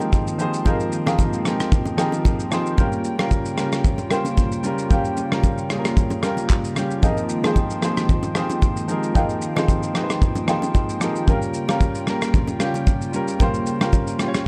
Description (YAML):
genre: amapiano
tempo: 113 BPM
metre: 4/4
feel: swing 55% on 16ths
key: F minor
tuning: A4 = 440 Hz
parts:
  - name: warm grand piano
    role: accompaniment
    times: 0.0-14.5 s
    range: F3 to Db5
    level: -27 LUFS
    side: equal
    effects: none
  - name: hollow soft pad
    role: sustained chords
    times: 0.0-14.5 s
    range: Db3 to G5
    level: -30 LUFS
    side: equal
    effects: chorus, sidechain pumping
  - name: natural country drum kit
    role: drums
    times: 0.0-14.5 s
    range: handclaps, kick drum, rim click, shaker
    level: -24 LUFS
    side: equal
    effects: vintage 12-bit sampler grit
  - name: bongos and congas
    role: percussion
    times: 0.0-14.1 s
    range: none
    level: -33 LUFS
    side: equal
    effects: none
  - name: deep mellow chord stab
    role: stabs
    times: 0.7-13.9 s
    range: Ab4 to G5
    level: -32 LUFS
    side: equal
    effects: chorus, phaser, tape echo
room: light reverb, studio reverb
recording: dark, warm production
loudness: -21 LUFS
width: mono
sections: 0.0-14.5 A section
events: none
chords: 0.0 Fm11; 2.8 Gm7b5; 7.0 Fm11; 11.3 Gm7b5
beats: 0.13 | 0.66 1.19 1.72 2.25 | 2.78 3.31 3.84 4.37 | 4.91 5.44 5.97 6.50 | 7.03 7.56 8.09 8.62 | 9.15 9.68 10.21 10.75 | 11.28 11.81 12.34 12.87 | 13.40 13.93 14.46